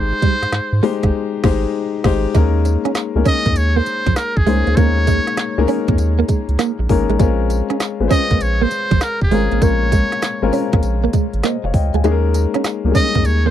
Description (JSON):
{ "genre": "R&B, new jack swing", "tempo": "99 BPM", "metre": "4/4", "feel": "swing 67% on 16ths", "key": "unclear", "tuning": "A4 = 440 Hz", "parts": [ { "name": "trumpet with metal mute", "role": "melody", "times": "0.0-13.5 s", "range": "Ab4 to Eb5", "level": "-21 LUFS", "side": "right 1 dB", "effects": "none" }, { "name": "dark grand piano", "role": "accompaniment", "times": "0.0-13.5 s", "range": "G3 to Ab5", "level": "-20 LUFS", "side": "left 8 dB", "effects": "none" }, { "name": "direct-recorded clean electric guitar", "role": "riff", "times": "0.0-13.5 s", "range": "F3 to Eb4", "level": "-20 LUFS", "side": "right 10 dB", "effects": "ensemble chorus" }, { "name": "round analog bass", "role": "bass", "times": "0.0-13.5 s", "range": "F1 to Ab2", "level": "-18 LUFS", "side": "right 1 dB", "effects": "none" }, { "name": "organic electronic drum kit", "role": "drums", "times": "0.2-13.4 s", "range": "crash cymbal, handclaps, hi-hat, kick drum, snare drum, tambourine", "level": "-17 LUFS", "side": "right 1 dB", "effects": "none" } ], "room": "little or no reverb", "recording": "dry, close 1970s-style studio recording", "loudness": "-14 LUFS", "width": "side -11 dB against mid", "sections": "0.0-2.3 A section; 2.3-13.5 B section", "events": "band accent 1.1-2.3; kick muted 12.0-12.6", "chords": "0.0 Abmaj7; 2.3 Eb7sus4; 7.2 Bbm9; 12.0 Eb7sus4", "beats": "0.53 1.13 1.74 | 2.35 2.95 3.56 4.16 | 4.77 5.38 5.98 6.59 | 7.19 7.80 8.40 9.01 | 9.62 10.22 10.83 11.44 | 12.04 12.65 13.25" }